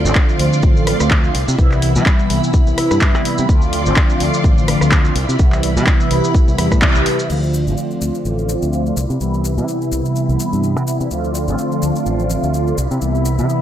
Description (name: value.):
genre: filtered disco house.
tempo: 126 BPM.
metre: 4/4.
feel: swing 56% on 16ths.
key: D dorian.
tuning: A4 = 440 Hz.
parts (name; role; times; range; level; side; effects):
mellow synth brass; accompaniment; 0.0-13.6 s; C3 to F4; -18 LUFS; equal; chorus, phaser, sidechain pumping, low-pass filter.
string machine, full ensemble; sustained chords; 0.0-13.6 s; E4 to C6; -25 LUFS; equal; ensemble chorus, sidechain pumping, low-pass filter.
fingered electric bass; bass; 0.0-13.4 s; A1 to C3; -19 LUFS; equal; sidechain pumping, low-pass filter.
maracas; percussion; 0.1-7.3 s; none; -30 LUFS; right 1 dB; sidechain pumping on perc, low-pass filter on perc.
electronic kick drum; drums; 0.2-6.9 s; none; -14 LUFS; equal; none.
house drum kit; drums; 0.2-13.6 s; crash cymbal, handclaps, hi-hat, rim click, shaker; -22 LUFS; equal; none.
room: light reverb, digital ambience.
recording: none.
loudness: -13 LUFS.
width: side -11 dB against mid.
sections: 0.0-7.3 A section; 7.3-13.6 B section.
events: band accent 6.8; filter sweep 7.3-13.6.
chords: 0.0 Dm7; 1.3 Cmaj7; 3.5 Dm7; 5.2 Cmaj7; 7.3 Dm7; 9.0 Cmaj7; 11.1 Dm7; 12.8 Cmaj7.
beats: 0.16 0.63 1.11 | 1.59 2.06 2.54 3.02 | 3.49 3.97 4.44 4.92 | 5.39 5.87 6.35 6.82 | 7.30 7.78 8.25 8.73 | 9.21 9.68 10.16 10.63 | 11.11 11.59 12.06 12.54 | 13.02 13.49.